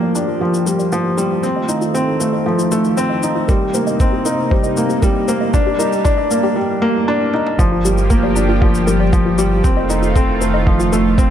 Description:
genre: piano and strings electronica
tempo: 117 BPM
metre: 4/4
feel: straight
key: G minor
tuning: A4 = 439 Hz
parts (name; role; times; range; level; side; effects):
- lush unison pad; sustained chords; 0.0-11.3 s; C3 to G4; -21 LUFS; right 1 dB; chorus, sidechain pumping
- warbly dusty pluck; arpeggios; 0.0-11.3 s; F4 to Eb5; -26 LUFS; left 2 dB; chorus, sidechain pumping, digital delay
- felt-muted upright piano; riff; 0.0-11.3 s; F3 to Eb4; -17 LUFS; equal; digital delay
- warm sub bass; bass; 0.0-11.3 s; F1 to Eb2; -19 LUFS; equal; tube saturation, sidechain pumping, high-pass filter
- electronic shaker and toms; drums; 0.2-11.3 s; none; -28 LUFS; left 4 dB; high-pass filter on perc, high-pass filter on toms
- electronic kick drum; drums; 3.5-11.3 s; none; -15 LUFS; equal; none
room: moderate lush hall reverb, RT60 2.5 s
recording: none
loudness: -13 LUFS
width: side -10 dB against mid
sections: 0.0-7.6 A section; 7.6-11.3 B section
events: build-up 0.0-7.6; filter sweep on analog synth pad 0.0-7.6; drum fill 7.3; drop 7.6-11.3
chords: 0.0 Gm7; 1.4 F7; 3.5 Cm7; 5.5 Ebmaj7; 7.6 Gm7; 9.6 F7

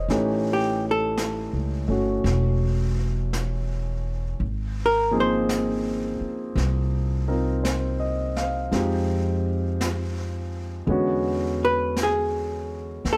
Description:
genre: jazz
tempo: 56 BPM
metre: 4/4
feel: swing 67% on 8ths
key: unclear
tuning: A4 = 440 Hz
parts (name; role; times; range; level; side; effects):
- warm concert grand piano; accompaniment; 0.0-13.1 s; D3 to F5; -29 LUFS; equal; none
- upright bass; bass; 0.0-13.2 s; E1 to F2; -29 LUFS; equal; none
- jazz brush drum kit; drums; 0.1-13.2 s; brushed snare drum, hi-hat, snare drum; -36 LUFS; equal; none
- archtop guitar, miked and amplified; melody; 0.5-13.2 s; G4 to C5; -26 LUFS; equal; none
room: light reverb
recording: none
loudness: -25 LUFS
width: mono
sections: 0.0-13.2 A section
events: hollow-body jazz guitar solo 0.0-13.2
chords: 0.1 A7#11; 4.4 Ab69; 8.7 Fm9; 10.9 E13

